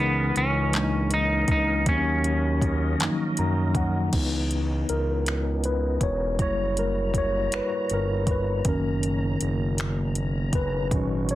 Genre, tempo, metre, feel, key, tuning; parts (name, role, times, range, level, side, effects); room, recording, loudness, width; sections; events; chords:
slow six-eight R&B; 53 BPM (dotted quarters); 6/8; straight; C# dorian; A4 = 440 Hz
semi-hollow electric guitar; melody; 0.0-3.7 s; B3 to D#4; -26 LUFS; equal; slapback echo, plate reverb
mellow tine electric piano; accompaniment; 0.0-11.3 s; A#2 to A#5; -27 LUFS; left 1 dB; medium stereo tremolo, plate reverb
bright tonewheel organ; sustained chords; 0.0-11.3 s; B2 to A#5; -35 LUFS; equal; chorus vibrato, slow rotary speaker, plate reverb
smooth synth bass; bass; 0.0-11.3 s; E1 to F#2; -27 LUFS; equal
smooth R&B drum kit; drums; 0.4-11.3 s; crash cymbal, finger snaps, handclaps, hi-hat, kick drum; -27 LUFS; equal
light reverb; dense, heavily limited modern master; -22 LUFS; side -15 dB against mid
0.0-4.1 A section; 4.1-11.3 B section
tine electric piano fill 3.0-4.1; tine electric piano solo 4.1-11.3
0.0 C#m69; 1.9 D#m7; 4.1 C#m9; 6.4 F#7b9; 8.7 Bmaj9/F#